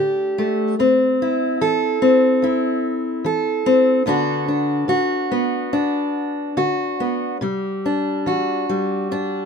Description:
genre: folk, solo fingerstyle acoustic guitar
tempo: 72 BPM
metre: 4/4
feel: rubato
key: unclear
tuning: A4 = 436 Hz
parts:
  - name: fingerpicked steel-string acoustic guitar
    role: solo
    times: 0.0-9.5 s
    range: D2 to A4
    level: -17 LUFS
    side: equal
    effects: none
room: light reverb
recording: minimal, uncompressed stereo recording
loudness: -17 LUFS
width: side -6 dB against mid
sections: 0.0-9.5 A section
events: none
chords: 0.0 D5; 0.8 Am/D; 4.1 Bm/D; 7.4 Cadd9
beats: | 0.78 1.60 2.42 3.25 | 4.07 4.89 5.73 6.57 | 7.41 8.26 9.11

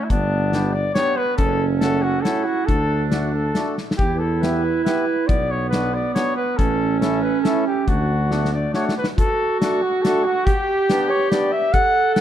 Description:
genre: alpine folk, alpine dance band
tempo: 139 BPM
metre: 3/4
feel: straight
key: D major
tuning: A4 = 440 Hz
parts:
  - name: warm flugelhorn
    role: melody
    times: 0.0-12.2 s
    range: D4 to F#5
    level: -22 LUFS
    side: equal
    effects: none
  - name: warm clarinet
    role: second line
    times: 0.0-12.2 s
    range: A3 to A4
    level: -23 LUFS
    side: right 5 dB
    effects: none
  - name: warm tuba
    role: bass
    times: 0.1-8.7 s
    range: F#1 to E2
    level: -24 LUFS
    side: left 1 dB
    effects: none
  - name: loose indie drum kit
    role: drums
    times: 0.1-12.2 s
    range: hi-hat, kick drum, snare drum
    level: -23 LUFS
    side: left 1 dB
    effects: none
  - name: mellow accordion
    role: accompaniment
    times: 0.5-12.2 s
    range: A3 to G4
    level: -28 LUFS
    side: left 2 dB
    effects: none
room: moderate recital hall reverb, RT60 1.6 s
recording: dark, warm production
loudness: -17 LUFS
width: side -10 dB against mid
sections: 0.0-9.2 A section; 9.2-12.2 A section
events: drum fill 3.8, 8.3-9.2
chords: 0.1 G; 1.4 F#m; 2.7 D; 4.0 Em; 5.3 Bm; 6.6 A; 7.9 D; 10.5 G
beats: | 0.10 0.53 0.95 | 1.38 1.81 2.25 | 2.68 3.11 3.55 | 3.99 4.43 4.86 | 5.29 5.72 6.15 | 6.58 7.01 7.44 | 7.87 8.30 8.73 | 9.17 9.61 10.04 | 10.46 10.89 11.31 | 11.74 12.16

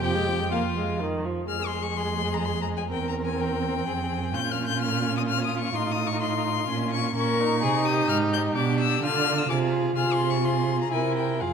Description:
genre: quick classical-period movement for string quartet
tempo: 127 BPM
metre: 3/4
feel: straight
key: F minor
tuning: A4 = 440 Hz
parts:
  - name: rich violin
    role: melody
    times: 0.0-11.5 s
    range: F5 to G6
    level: -29 LUFS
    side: left 9 dB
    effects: none
  - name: rich violin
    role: second line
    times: 0.0-11.5 s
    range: F4 to Bb4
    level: -31 LUFS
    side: left 2 dB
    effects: none
  - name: rich viola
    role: accompaniment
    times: 0.0-11.5 s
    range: Eb3 to F4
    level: -29 LUFS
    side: right 1 dB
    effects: none
  - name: rich cello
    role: bass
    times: 0.0-11.5 s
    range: E2 to D3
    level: -28 LUFS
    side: right 5 dB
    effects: none
room: wet concert hall reverb, RT60 2.3 s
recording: none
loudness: -23 LUFS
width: side -6 dB against mid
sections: 0.0-1.5 A section; 1.5-11.5 B section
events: none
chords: 0.0 Fm; 2.9 C7/E; 3.9 Fm; 4.3 Bbm; 5.8 F7/A; 6.7 Bbm; 7.2 Gdim/Bb; 8.6 Bdim7; 10.0 Fm/C; 10.9 C7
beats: | 0.03 0.52 1.01 | 1.49 1.97 2.44 | 2.92 3.40 3.87 | 4.34 4.82 5.29 | 5.75 6.22 6.69 | 7.16 7.62 8.09 | 8.56 9.02 9.49 | 9.96 10.44 10.92 | 11.41

